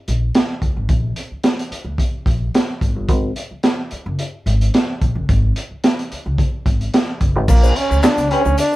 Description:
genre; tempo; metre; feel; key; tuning
funk; 109 BPM; 4/4; straight; Bb mixolydian; A4 = 440 Hz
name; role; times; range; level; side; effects
upright bass; bass; 0.1-8.6 s; Gb1 to D2; -18 LUFS; equal; none
crunchy breakbeat drum kit; drums; 0.1-8.7 s; crash cymbal, handclaps, hi-hat, kick drum, snare drum; -18 LUFS; equal; none
brilliant trombone; melody; 7.5-8.8 s; Bb3 to D4; -18 LUFS; right 1 dB; none
semi-hollow electric guitar; accompaniment; 7.5-8.8 s; D4 to C5; -23 LUFS; left 5 dB; wah
egg shaker; percussion; 7.5-8.8 s; none; -36 LUFS; left 4 dB; none
room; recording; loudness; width
light reverb; band playing live in one room; -16 LUFS; side -17 dB against mid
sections
0.0-7.5 A section; 7.5-8.8 B section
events
none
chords
0.0 Bb7; 3.1 Ab7(no3); 7.5 Bb9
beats
0.35 | 0.89 1.44 1.99 2.54 | 3.09 3.64 4.19 4.74 | 5.29 5.84 6.39 6.94 | 7.48 8.03 8.58

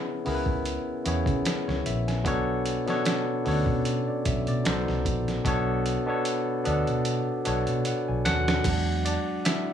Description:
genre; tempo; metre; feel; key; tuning
R&B, neo-soul; 75 BPM; 4/4; swing 55% on 16ths; B dorian; A4 = 441 Hz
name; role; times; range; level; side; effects
barky tine electric piano; accompaniment; 0.0-9.7 s; B2 to A5; -27 LUFS; left 1 dB; overdrive
vintage muted fingered electric bass; bass; 0.3-9.2 s; A#1 to C#3; -29 LUFS; right 1 dB; none
boom bap sampler-style drum kit; drums; 0.3-9.7 s; crash cymbal, hi-hat, kick drum, snare drum; -30 LUFS; right 1 dB; none
room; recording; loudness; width
little or no reverb; studio reverb; -24 LUFS; side -9 dB against mid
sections
0.0-8.6 A section; 8.6-9.7 B section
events
drum fill 5.4-8.6; tine electric piano solo 8.6-9.7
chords
0.0 C#m7; 2.2 Bm9; 4.6 B7b9; 5.4 Bm9; 8.6 E9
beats
0.65 1.45 | 2.25 3.05 3.85 4.65 | 5.45 6.25 7.05 7.85 | 8.65 9.45

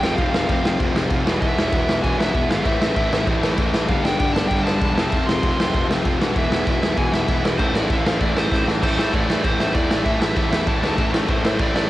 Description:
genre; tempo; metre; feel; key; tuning
punk rock; 195 BPM; 4/4; straight; A minor; A4 = 439 Hz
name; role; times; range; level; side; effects
nasal lead guitar with a parked wah; melody; 0.0-11.9 s; C5 to C6; -26 LUFS; equal; overdrive, cassette tape
cranked stack guitar; riff; 0.0-11.9 s; E2 to A3; -26 LUFS; left 6 dB; overdrive
cranked stack guitar; riff; 0.0-11.9 s; E2 to A3; -28 LUFS; equal; overdrive
tight distorted guitar; riff; 0.0-11.9 s; G2 to F4; -29 LUFS; right 6 dB; distortion
fuzz picked electric bass; bass; 0.0-11.9 s; E1 to A2; -26 LUFS; equal; overdrive
raw garage drum kit; drums; 0.0-11.8 s; crash cymbal, kick drum, snare drum; -21 LUFS; equal; cassette tape
room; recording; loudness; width
light reverb, studio reverb; home recording on cassette; -17 LUFS; side -15 dB against mid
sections
0.0-8.8 A section; 8.8-11.9 B section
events
drum fill 8.5-8.8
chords
0.0 F; 1.3 E; 2.7 Am; 3.9 G; 5.0 F; 6.2 E; 7.6 Am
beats
| 0.18 0.49 0.80 1.11 | 1.42 1.73 2.04 2.35 | 2.66 2.97 3.28 3.59 | 3.89 4.20 4.51 4.82 | 5.13 5.44 5.74 6.05 | 6.36 6.67 6.98 7.29 | 7.59 7.90 8.21 8.52 | 8.83 9.13 9.44 9.75 | 10.06 10.37 10.68 10.98 | 11.29 11.60

